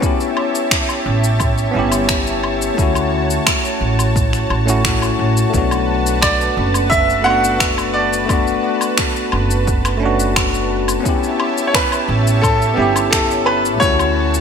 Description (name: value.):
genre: sunset chillout.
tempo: 87 BPM.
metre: 4/4.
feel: straight.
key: B minor.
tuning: A4 = 442 Hz.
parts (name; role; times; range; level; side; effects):
bell-like tine electric piano; accompaniment; 0.0-14.4 s; A3 to G4; -20 LUFS; moving between left 7 dB and right 5 dB; auto-pan, low-pass filter, ping-pong delay.
lush unison pad; sustained chords; 0.0-14.4 s; F#4 to A5; -22 LUFS; equal; chorus.
electronic kick drum; drums; 0.0-14.0 s; none; -20 LUFS; equal; overdrive, studio reverb.
electronic shaker, woodblock and finger snaps; drums; 0.0-14.4 s; none; -21 LUFS; left 1 dB; overdrive, studio reverb, gated reverb.
upright bass; bass; 1.1-14.4 s; F#1 to D2; -20 LUFS; right 1 dB; none.
bright grand piano; melody; 6.2-14.4 s; G4 to F#5; -18 LUFS; right 1 dB; digital delay.
room: moderate lush hall reverb, RT60 2.6 s.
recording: bright 1980s-style digital production.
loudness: -14 LUFS.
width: side -7 dB against mid.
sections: 0.0-14.4 A section.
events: none.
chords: 0.0 A7; 2.8 Dmaj7; 5.5 Bm7; 11.1 A7; 13.8 Dmaj7.